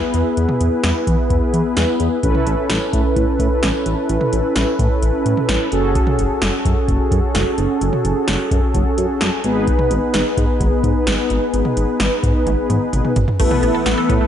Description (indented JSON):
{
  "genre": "synth-pop",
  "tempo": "129 BPM",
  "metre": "4/4",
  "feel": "straight",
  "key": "unclear",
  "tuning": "A4 = 440 Hz",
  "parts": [
    { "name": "mellow synth brass", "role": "accompaniment", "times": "0.0-14.3 s", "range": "B3 to B4", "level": "-18 LUFS", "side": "equal", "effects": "chorus" },
    { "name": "smooth synth bass", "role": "bass", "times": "0.1-14.2 s", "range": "F#1 to E3", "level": "-20 LUFS", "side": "equal", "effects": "none" },
    { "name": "electro analog drum machine", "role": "drums", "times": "0.1-14.2 s", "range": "crash cymbal, hi-hat, kick drum, snare drum, toms", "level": "-20 LUFS", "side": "equal", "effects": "overdrive" },
    { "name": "lush unison pad", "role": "sustained chords", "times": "13.4-14.3 s", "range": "E3 to B3", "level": "-21 LUFS", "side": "right 2 dB", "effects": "chorus" },
    { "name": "wide unison pluck", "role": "arpeggios", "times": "13.4-14.3 s", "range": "A3 to A4", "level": "-24 LUFS", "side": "right 2 dB", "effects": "diffuse ambient delay" }
  ],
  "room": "moderate plate reverb, RT60 1.6 s",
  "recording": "dreamy mix soaked in reverb, nothing above 10.9 kHz",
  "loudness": "-15 LUFS",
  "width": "side -9 dB against mid",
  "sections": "0.0-13.4 A section",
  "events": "drum fill 12.5-13.4",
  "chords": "0.0 E; 2.2 Aadd9; 5.7 F#madd9; 9.4 G#m; 13.4 Asus2",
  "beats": "| 0.37 0.84 1.30 1.77 | 2.23 2.70 3.16 3.63 | 4.09 4.56 5.02 5.49 | 5.95 6.42 6.88 7.35 | 7.81 8.28 8.74 9.21 | 9.68 10.14 10.61 11.07 | 11.54 12.00 12.47 12.93 | 13.40 13.86"
}